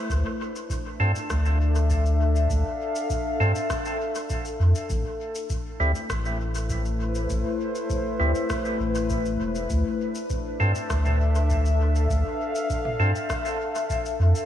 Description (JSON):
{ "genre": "ambient dub", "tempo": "100 BPM", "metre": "4/4", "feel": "straight", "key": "D dorian", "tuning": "A4 = 444 Hz", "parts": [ { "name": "warbly tape-like pad", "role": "sustained chords", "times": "0.0-14.5 s", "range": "A3 to F5", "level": "-28 LUFS", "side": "left 2 dB", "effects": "chorus, built-in reverb" }, { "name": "warm sub bass", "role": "bass", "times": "0.1-14.3 s", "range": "E1 to G2", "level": "-22 LUFS", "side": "equal", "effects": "none" }, { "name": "electronic kick drum", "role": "drums", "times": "0.1-14.0 s", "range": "none", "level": "-32 LUFS", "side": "equal", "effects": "studio ambience" }, { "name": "organic electronic drum kit", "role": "drums", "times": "0.1-14.5 s", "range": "rim click, shaker, toms", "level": "-37 LUFS", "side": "left 1 dB", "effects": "studio ambience, dub echo" }, { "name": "percussive tonewheel organ", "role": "stabs", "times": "1.0-13.1 s", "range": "G3 to A4", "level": "-32 LUFS", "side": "right 2 dB", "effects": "overdrive, stopped rotary speaker, dub echo" } ], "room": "moderate lush hall reverb, RT60 2.5 s", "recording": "dreamy mix soaked in reverb", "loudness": "-23 LUFS", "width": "side -10 dB against mid", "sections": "0.0-14.5 A section", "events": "none", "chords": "0.1 Dm7; 4.9 Am; 9.7 Dm7" }